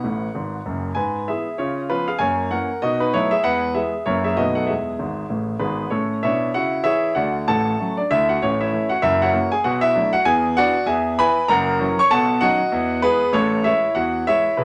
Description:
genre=jazz, stride piano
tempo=194 BPM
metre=4/4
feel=swing 59% on 8ths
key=E major, A major from 5.9 s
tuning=A4 = 440 Hz
part: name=warm concert grand piano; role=solo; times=0.0-14.6 s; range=F#1 to C#6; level=-20 LUFS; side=equal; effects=none
room=wet studio reverb, RT60 0.8 s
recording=none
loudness=-20 LUFS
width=mono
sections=0.0-5.9 A section; 5.9-14.6 B section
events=grand piano fill 0.0-1.0, 5.0-5.9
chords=0.0 B5; 1.0 E/G#; 1.6 C#7; 2.2 F#7; 2.8 B7; 3.5 E; 4.1 F#7; 4.4 B7; 4.7 E; 5.9 A; 7.2 Dmaj7; 8.4 A; 9.0 F#7; 9.7 Bm7; 10.3 E7; 10.9 E; 11.5 F#7; 12.1 B9; 12.7 E; 13.4 Amaj7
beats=0.03 0.34 0.66 | 0.97 1.28 1.59 1.90 | 2.21 2.52 2.84 3.15 | 3.46 3.77 4.08 4.39 | 4.70 5.01 5.32 5.63 | 5.94 6.25 6.56 6.87 | 7.18 7.49 7.80 8.11 | 8.42 8.73 9.04 9.34 | 9.65 9.96 10.27 10.58 | 10.89 11.20 11.50 11.81 | 12.12 12.43 12.74 13.05 | 13.36 13.66 13.97 14.28 | 14.59

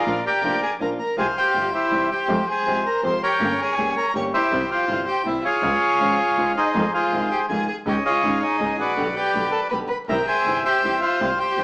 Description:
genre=tango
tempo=162 BPM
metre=3/4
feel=rubato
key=unclear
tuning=A4 = 440 Hz
part: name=bandoneon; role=melody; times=0.0-11.6 s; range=G4 to Db6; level=-20 LUFS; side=equal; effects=none
part: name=warm violin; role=second line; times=0.0-11.6 s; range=Eb4 to Db5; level=-26 LUFS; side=equal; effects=none
part: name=flamenco guitar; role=accompaniment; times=0.1-11.6 s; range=B2 to Ab4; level=-27 LUFS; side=equal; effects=none
part: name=clear double bass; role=bass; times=0.1-11.6 s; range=F1 to F2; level=-32 LUFS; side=equal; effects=none
room=moderate large studio reverb, RT60 1.2 s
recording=band playing live in one room, vinyl crackle, small speaker sound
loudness=-19 LUFS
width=side -26 dB against mid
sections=0.0-11.6 A section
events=none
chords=0.1 Bb; 1.2 Csus4; 1.9 C; 2.3 Fmadd9; 3.4 Gdim; 4.5 C; 5.6 Db; 6.7 Fm7; 7.9 Dbsus2; 9.0 G/B; 10.1 C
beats=| 0.06 0.43 0.80 | 1.17 1.54 1.92 | 2.29 2.66 3.04 | 3.41 3.78 4.15 | 4.52 4.89 5.26 | 5.63 6.00 6.37 | 6.75 7.12 7.49 | 7.86 8.23 8.60 | 8.97 9.34 9.71 | 10.08 10.45 10.82 | 11.20 11.57

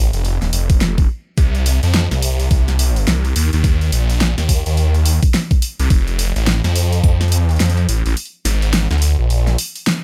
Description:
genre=glitch hop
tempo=106 BPM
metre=4/4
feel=swing 60% on 16ths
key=C dorian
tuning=A4 = 440 Hz
part: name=phased detuned saw bass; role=bass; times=0.0-9.6 s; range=Eb1 to F2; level=-18 LUFS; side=equal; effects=phaser
part: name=pop drum kit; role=drums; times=0.1-10.0 s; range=hi-hat, snare drum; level=-23 LUFS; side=equal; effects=overdrive
part: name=electronic kick drum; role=drums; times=0.7-7.2 s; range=none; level=-16 LUFS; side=equal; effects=overdrive
room=little or no reverb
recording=none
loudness=-16 LUFS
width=mono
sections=0.0-10.0 A section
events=kick drops out 8.2-10.0; band accent 9.9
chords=none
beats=0.24 0.81 | 1.38 1.94 2.51 3.08 | 3.64 4.21 4.77 5.34 | 5.91 6.47 7.04 7.60 | 8.17 8.73 9.30 9.87

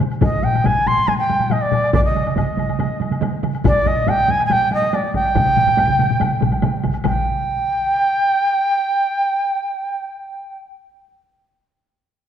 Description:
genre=japanese traditional, taiko drum ensemble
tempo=141 BPM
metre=4/4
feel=straight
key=G miyako bushi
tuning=A4 = 441 Hz
part: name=solo taiko drums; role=percussion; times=0.0-7.2 s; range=none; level=-25 LUFS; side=right 3 dB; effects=none
part: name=taiko ensemble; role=percussion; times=0.0-7.4 s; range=none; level=-22 LUFS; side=left 6 dB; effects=none
part: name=taiko ensemble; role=percussion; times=0.0-7.4 s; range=none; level=-24 LUFS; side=right 4 dB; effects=none
part: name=woodblock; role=percussion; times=0.0-7.2 s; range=none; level=-32 LUFS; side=left 2 dB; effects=none
part: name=reedy shakuhachi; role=melody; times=0.2-10.6 s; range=D5 to C6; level=-18 LUFS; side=right 1 dB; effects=none
part: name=taiko ensemble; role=percussion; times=0.2-7.2 s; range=none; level=-23 LUFS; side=equal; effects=none
room=wet recital hall reverb, RT60 1.6 s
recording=none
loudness=-16 LUFS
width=side -9 dB against mid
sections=0.0-7.0 A section; 7.0-10.4 B section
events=speeding up 0.0-10.4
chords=none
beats=| 0.22 0.65 1.08 1.51 | 1.94 2.37 2.80 3.23 | 3.65 4.08 4.50 4.93 | 5.36 5.78 6.20 6.63 | 7.05 7.47 7.89 8.32 | 8.74 9.16 9.58 9.99

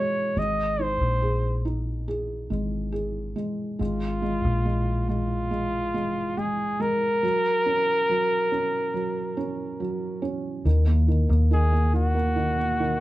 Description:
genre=pop ballad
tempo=70 BPM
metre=4/4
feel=straight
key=unclear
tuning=A4 = 440 Hz
part: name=warm flugelhorn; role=melody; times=0.0-13.0 s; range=F4 to Eb5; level=-26 LUFS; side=equal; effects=none
part: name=felt-muted upright piano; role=accompaniment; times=0.0-13.0 s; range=Eb3 to Ab4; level=-29 LUFS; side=right 1 dB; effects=none
part: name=vintage muted fingered electric bass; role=bass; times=0.4-13.0 s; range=Ab1 to Eb2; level=-24 LUFS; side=equal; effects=none
room=light reverb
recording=band playing live in one room, nothing above 11.0 kHz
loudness=-22 LUFS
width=side -16 dB against mid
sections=0.0-10.7 A section; 10.7-13.0 B section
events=none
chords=0.4 Abadd9; 3.8 Fmadd11/Ab; 7.2 Gb; 10.7 Ebm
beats=| 0.37 1.23 2.08 2.94 | 3.80 4.66 5.51 6.37 | 7.23 8.09 8.94 9.80 | 10.66 11.51 12.37

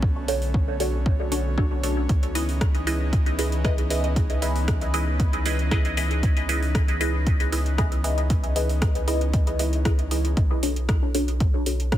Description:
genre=dub techno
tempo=116 BPM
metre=4/4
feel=straight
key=unclear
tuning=A4 = 440 Hz
part: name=airy breathy pad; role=sustained chords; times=0.0-10.3 s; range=D3 to D#4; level=-33 LUFS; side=equal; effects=chorus, sidechain pumping
part: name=soft dub sub bass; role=bass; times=0.0-12.0 s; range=B1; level=-26 LUFS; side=equal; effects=sidechain pumping
part: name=electronic kick drum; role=drums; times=0.0-12.0 s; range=none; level=-22 LUFS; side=equal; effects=overdrive
part: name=filtered dub chord stab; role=stabs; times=0.3-12.0 s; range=D4 to D#5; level=-27 LUFS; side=equal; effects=phaser, cassette tape, sidechain pumping, dub echo
part: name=deep house drum kit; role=drums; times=0.3-12.0 s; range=hi-hat, rim click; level=-33 LUFS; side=equal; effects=overdrive
room=digital ambience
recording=dense, heavily limited modern master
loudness=-21 LUFS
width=side -12 dB against mid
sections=0.0-10.4 A section; 10.4-12.0 A section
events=none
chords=0.0 Bm9; 2.1 C#m9; 10.4 Bm9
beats=| 0.03 0.54 1.06 1.58 | 2.09 2.61 3.13 3.65 | 4.16 4.68 5.20 5.71 | 6.23 6.75 7.27 7.78 | 8.30 8.82 9.34 9.85 | 10.37 10.89 11.40 11.92

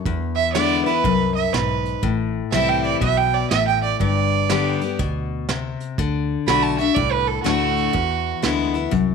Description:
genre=honky-tonk and classic country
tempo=122 BPM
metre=4/4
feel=swing 64% on 8ths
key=G major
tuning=A4 = 439 Hz
part: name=picked steel-string acoustic guitar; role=accompaniment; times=0.0-9.1 s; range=E2 to G4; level=-22 LUFS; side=left 9 dB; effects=none
part: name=vintage muted fingered electric bass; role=bass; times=0.1-9.1 s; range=G1 to E2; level=-26 LUFS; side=right 1 dB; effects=none
part: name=vintage brush drum kit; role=drums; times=0.1-9.1 s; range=hi-hat, kick drum, snare drum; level=-26 LUFS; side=right 4 dB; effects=none
part: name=rich fiddle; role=second line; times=0.4-8.9 s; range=F#4 to B5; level=-21 LUFS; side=right 11 dB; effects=none
room=moderate plate reverb, RT60 1.3 s, small room ambience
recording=1960s-style stereo with parts hard left and right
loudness=-18 LUFS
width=side -5 dB against mid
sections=0.0-9.1 A section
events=fiddle solo 0.0-9.1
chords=0.1 E7; 2.0 Am7; 4.0 G; 6.0 D; 7.9 E7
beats=| 0.06 0.55 1.04 1.54 | 2.03 2.52 3.02 3.51 | 4.00 4.50 4.99 5.48 | 5.98 6.47 6.96 7.45 | 7.95 8.44 8.93

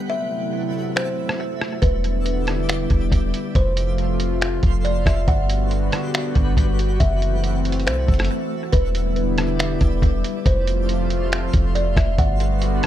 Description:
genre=hip hop, atmospheric cloud-rap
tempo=139 BPM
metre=4/4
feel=half-time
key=E minor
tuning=A4 = 440 Hz
part: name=kalimba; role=melody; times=0.0-12.9 s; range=B4 to F#5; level=-27 LUFS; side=equal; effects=low-pass filter, analog delay
part: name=warm analog pad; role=sustained chords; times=0.0-12.9 s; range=C3 to F#4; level=-25 LUFS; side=equal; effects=chorus, sidechain pumping
part: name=twinkling granular texture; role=texture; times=0.0-12.9 s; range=G3 to E5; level=-33 LUFS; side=equal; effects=built-in reverb
part: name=lo-fi sampler-style drum kit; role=drums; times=1.0-12.9 s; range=finger snaps, hi-hat, kick drum, rim click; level=-21 LUFS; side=equal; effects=none
part: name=warm 808-style bass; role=bass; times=1.8-12.8 s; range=E1 to C2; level=-21 LUFS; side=equal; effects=none
room=digital ambience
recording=echo-heavy mix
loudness=-18 LUFS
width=side -12 dB against mid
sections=0.0-8.7 A section; 8.7-12.9 B section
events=break 0.0-1.8, 8.3-8.7; hi-hats muted 0.1-1.8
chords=0.1 F#m7b5; 1.8 Em7; 3.6 F; 5.3 Gmaj7; 7.0 F#m7b5; 8.7 Em7; 10.5 F; 12.2 Gmaj7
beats=| 0.10 0.53 0.96 1.39 | 1.82 2.26 2.69 3.12 | 3.55 3.98 4.41 4.85 | 5.28 5.71 6.14 6.57 | 7.00 7.44 7.87 8.30 | 8.73 9.16 9.59 10.03 | 10.46 10.89 11.32 11.75 | 12.18 12.62

